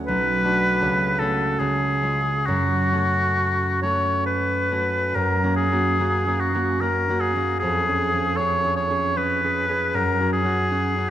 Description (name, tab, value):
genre	classical, romantic duo for oboe and harp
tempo	66-83 BPM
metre	3/4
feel	rubato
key	F# minor, F# major from 5.1 s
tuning	A4 = 442 Hz
part	concert harp	accompaniment	0.0-11.1 s	B1 to G#4	-23 LUFS	right 1 dB	none
part	clear oboe	melody	0.1-11.1 s	F#4 to C#5	-22 LUFS	left 1 dB	none
room	moderate scoring stage reverb, RT60 1.8 s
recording	none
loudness	-19 LUFS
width	side -11 dB against mid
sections	0.0-5.1 A section; 5.1-11.1 B section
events	none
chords	0.1 Bm7; 0.8 F#m/C#; 1.6 C#; 2.5 F#m; 5.1 F#; 7.6 C#/E#; 9.9 F#5